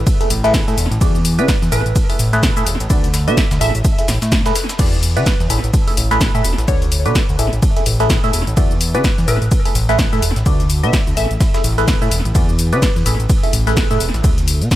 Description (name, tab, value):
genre	piano house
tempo	127 BPM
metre	4/4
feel	swing 59% on 16ths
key	unclear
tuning	A4 = 440 Hz
part	fat analog bass	bass	0.0-14.7 s	E1 to C#3	-18 LUFS	equal	sidechain pumping
part	breakbeat sampler-style drum kit	drums	0.1-14.8 s	hi-hat, shaker, snare drum	-31 LUFS	left 1 dB	none
part	electronic kick drum	drums	0.1-14.8 s	none	-17 LUFS	equal	none
part	punchy analog drum machine	drums	0.1-14.8 s	crash cymbal, hi-hat, ride cymbal, shaker, snare drum	-22 LUFS	left 1 dB	analog delay
part	barking FM electric piano	riff	0.2-14.0 s	D3 to E5	-21 LUFS	right 1 dB	phaser, tremolo, sidechain pumping, analog delay
part	glassy wavetable pluck	melody	1.4-13.1 s	B4 to E5	-25 LUFS	equal	chorus, cassette tape, analog delay
room	little or no reverb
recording	echo-heavy mix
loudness	-13 LUFS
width	side -14 dB against mid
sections	0.0-14.8 A section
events	none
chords	0.0 A5; 1.0 E9; 1.7 A5; 2.9 D6; 3.6 A5; 4.8 E9; 5.5 A5; 6.7 D6; 7.4 A5; 8.6 E9; 9.3 A5; 10.5 D6; 11.2 A5; 12.3 E9; 13.1 A5; 14.2 Bm/D